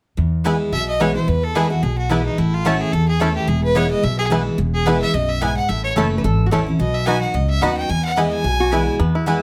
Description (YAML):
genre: bluegrass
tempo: 218 BPM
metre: 4/4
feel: swing 55% on 8ths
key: E major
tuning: A4 = 435 Hz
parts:
  - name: picked steel-string acoustic guitar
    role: accompaniment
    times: 0.2-9.4 s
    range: E2 to F#4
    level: -23 LUFS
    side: equal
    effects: none
  - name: upright bass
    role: bass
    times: 0.2-9.4 s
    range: E1 to E2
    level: -24 LUFS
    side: equal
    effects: none
  - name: mandolin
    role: stabs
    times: 0.4-9.4 s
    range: A3 to B5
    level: -26 LUFS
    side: equal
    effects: none
  - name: bluegrass banjo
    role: melody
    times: 0.5-9.4 s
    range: A3 to F#4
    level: -27 LUFS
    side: equal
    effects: none
  - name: clear fiddle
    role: melody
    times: 0.7-8.9 s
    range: D#4 to G#5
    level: -25 LUFS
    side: equal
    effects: none
  - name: lap resonator guitar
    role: second line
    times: 6.0-9.0 s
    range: E4 to B4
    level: -27 LUFS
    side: equal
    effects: none
room: light reverb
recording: close, detailed microphones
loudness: -19 LUFS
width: mono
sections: 0.2-9.0 A section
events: none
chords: 0.2 E; 2.4 A; 3.5 E; 5.7 A; 6.8 B; 7.9 E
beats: | 0.18 0.45 0.73 1.00 | 1.28 1.56 1.83 2.11 | 2.38 2.66 2.93 3.21 | 3.49 3.76 4.04 4.31 | 4.59 4.87 5.14 5.42 | 5.69 5.97 6.24 6.52 | 6.79 7.07 7.34 7.62 | 7.90 8.17 8.45 8.72 | 9.00 9.27